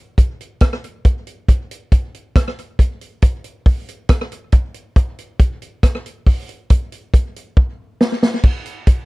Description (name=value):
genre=reggae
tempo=69 BPM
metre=4/4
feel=straight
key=none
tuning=none
part: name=vintage drum kit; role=drums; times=0.2-9.1 s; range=crash cymbal, hi-hat, kick drum, rim click, snare drum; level=-12 LUFS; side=equal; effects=slapback echo
room=light reverb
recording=dry, close 1970s-style studio recording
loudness=-16 LUFS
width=side -24 dB against mid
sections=0.0-8.4 A section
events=drum fill 7.6-8.4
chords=none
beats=0.61 | 1.48 2.35 3.22 4.09 | 4.96 5.83 6.70 7.57 | 8.44